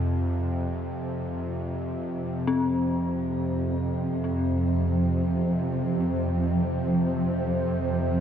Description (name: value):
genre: dark ambient drone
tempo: free time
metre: none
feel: none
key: unclear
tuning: A4 = 439 Hz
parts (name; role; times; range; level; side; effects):
- bowed-like drone; drone; 0.0-8.2 s; F2 to C3; -26 LUFS; equal; built-in reverb
- granular cloud pad; sustained chords; 3.5-8.2 s; F3 to C5; -28 LUFS; right 2 dB; built-in reverb
- dark detuned synth bell; arpeggios; 2.5-8.2 s; C4; -32 LUFS; left 3 dB; chorus, tremolo, tape echo, shimmer reverb
room: wet cathedral reverb, RT60 5.5 s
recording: dark, warm production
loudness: -24 LUFS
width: side -8 dB against mid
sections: 0.0-2.5 A section; 2.5-8.2 A section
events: none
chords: 0.0 F5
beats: free time